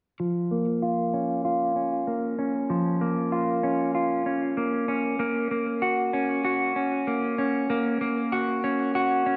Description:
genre	dream pop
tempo	96 BPM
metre	4/4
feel	straight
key	unclear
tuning	A4 = 439 Hz
part	clean electric guitar	arpeggios	0.2-9.4 s	F3 to Gb4	-26 LUFS	equal	lush chorus, low-pass filter, digital delay
room	wet recital hall reverb, RT60 1.3 s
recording	none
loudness	-26 LUFS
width	mono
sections	0.2-9.4 A section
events	filter sweep on clean electric guitar 0.2-9.4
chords	0.2 Bbm/F; 5.2 Gb/Bb

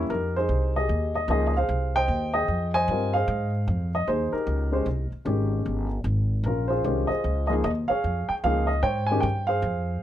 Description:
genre	jazz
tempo	151 BPM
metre	4/4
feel	swing 64% on 8ths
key	F minor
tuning	A4 = 440 Hz
part	dark baby grand piano	melody	0.0-10.0 s	Eb3 to Ab5	-25 LUFS	equal	none
part	upright bass	bass	0.0-10.0 s	G1 to Ab2	-26 LUFS	equal	none
room	light reverb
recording	none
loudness	-23 LUFS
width	side -11 dB against mid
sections	0.1-10.0 A section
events	none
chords	0.1 Fm9; 6.5 Bbm9

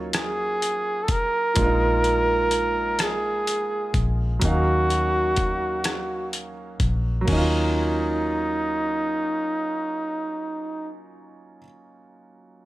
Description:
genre	slow six-eight R&B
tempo	42 BPM (dotted quarters)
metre	6/8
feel	straight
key	Eb minor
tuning	A4 = 442 Hz
part	clear baby grand piano	accompaniment	0.0-12.7 s	F3 to F5	-29 LUFS	right 2 dB	none
part	vintage muted fingered electric bass	bass	0.0-11.6 s	F1 to Eb2	-26 LUFS	left 1 dB	none
part	breathy flugelhorn	melody	0.1-10.9 s	Eb4 to Bb4	-24 LUFS	right 1 dB	slapback echo
part	dusty soul sampler-style drum kit	drums	0.1-7.5 s	crash cymbal, hi-hat, kick drum, rim click	-26 LUFS	left 1 dB	overdrive
room	light reverb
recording	none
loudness	-21 LUFS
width	side -17 dB against mid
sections	0.0-7.3 A section; 7.3-10.1 B section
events	none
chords	0.0 Ebm9; 1.6 Bb7sus4; 4.4 Ebm9

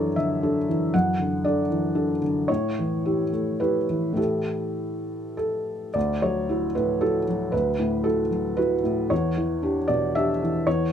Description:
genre	neoclassical minimalist piano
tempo	98-119 BPM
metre	3/4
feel	rubato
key	D major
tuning	A4 = 437 Hz
part	felt-muted upright piano	solo	0.0-10.9 s	D2 to F#5	-22 LUFS	equal	none
room	light reverb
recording	none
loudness	-22 LUFS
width	side -8 dB against mid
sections	0.0-6.0 A section; 6.0-10.9 A section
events	none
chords	0.0 Dadd9/F#; 2.5 A7; 6.0 Dadd9; 9.1 Em7

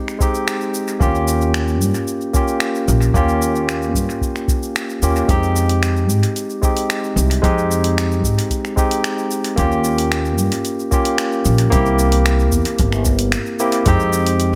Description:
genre	sunset chillout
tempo	112 BPM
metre	4/4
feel	straight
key	F minor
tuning	A4 = 440 Hz
part	barky tine electric piano	accompaniment	0.0-14.6 s	Ab3 to G4	-21 LUFS	equal	vintage 12-bit sampler grit, analog delay
part	smooth R&B drum kit	drums	0.1-14.5 s	finger snaps, hi-hat, shaker, toms	-27 LUFS	equal	analog delay
part	electronic kick drum	drums	0.2-14.0 s	none	-21 LUFS	equal	overdrive
part	upright bass	bass	1.0-14.6 s	G1 to Ab2	-20 LUFS	equal	none
room	light reverb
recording	echo-heavy mix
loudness	-18 LUFS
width	mono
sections	0.0-13.9 A section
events	kick drops out 13.3-13.9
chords	0.0 Fm7 (rootless); 1.0 Eb7; 5.3 Fm7; 9.6 Eb7; 11.7 C7; 13.9 Fm7

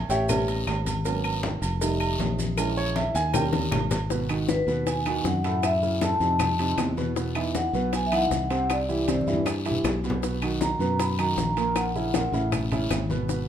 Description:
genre	Afro-Cuban jazz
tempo	157 BPM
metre	4/4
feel	straight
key	G# minor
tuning	A4 = 440 Hz
part	warm baby grand piano	accompaniment	0.0-13.5 s	A2 to G#5	-28 LUFS	right 3 dB	none
part	fingered electric bass	bass	0.0-13.5 s	E#1 to G2	-28 LUFS	equal	none
part	congas	percussion	0.1-13.5 s	none	-32 LUFS	left 4 dB	none
part	cowbell and bongos	percussion	0.1-13.5 s	none	-32 LUFS	left 8 dB	none
part	guiro	percussion	0.1-13.5 s	none	-40 LUFS	left 5 dB	none
part	maracas	percussion	0.1-13.5 s	none	-40 LUFS	right 7 dB	none
part	agogo bells and timbales	percussion	0.3-13.1 s	none	-34 LUFS	right 7 dB	none
part	claves	percussion	0.3-13.1 s	none	-38 LUFS	left 8 dB	none
part	vibraphone with medium mallets	melody	4.5-12.5 s	B4 to B5	-27 LUFS	left 1 dB	none
room	moderate large studio reverb, RT60 0.9 s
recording	minimal, uncompressed stereo recording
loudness	-23 LUFS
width	side -9 dB against mid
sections	0.0-4.1 A section; 4.1-13.5 B section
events	grand piano solo 0.0-4.1; drum fill 3.3-4.1, 9.1-10.2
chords	0.3 A9; 1.1 G#m11; 1.8 F7; 2.6 A#m7b5; 3.3 D#7; 4.1 G#m7; 5.6 F#m7; 6.4 F7; 7.2 Esus2; 8.7 Cadd9; 10.2 Bmaj7; 11.8 A#dim; 12.5 Aadd9

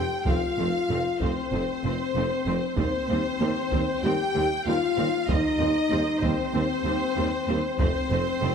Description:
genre	cinematic, epic orchestral film score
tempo	96 BPM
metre	4/4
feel	straight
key	C dorian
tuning	A4 = 440 Hz
part	rich symphonic violin section	melody	0.0-8.5 s	C5 to G5	-34 LUFS	left 4 dB	none
part	clear symphonic violin section	second line	0.0-8.5 s	C5 to G5	-31 LUFS	left 1 dB	none
part	rich symphonic viola section	accompaniment	0.0-8.5 s	G3 to C4	-34 LUFS	right 1 dB	none
part	mellow French horn section	sustained chords	0.0-8.5 s	C4 to G4	-28 LUFS	left 4 dB	none
part	mellow tuba	bass	0.0-8.5 s	F1 to Eb2	-32 LUFS	right 4 dB	none
part	rich symphonic cello section	bass	0.0-8.5 s	Eb2 to F2	-33 LUFS	right 3 dB	none
part	rich symphonic double bass section	bass	0.0-8.5 s	F1 to Eb2	-33 LUFS	right 4 dB	none
part	taiko ensemble	drums	0.3-8.4 s	none	-29 LUFS	equal	none
room	moderate scoring stage reverb, RT60 1.7 s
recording	none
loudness	-23 LUFS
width	side -7 dB against mid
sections	0.0-8.5 A section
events	none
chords	0.0 F; 2.8 Cm/Eb; 7.8 F

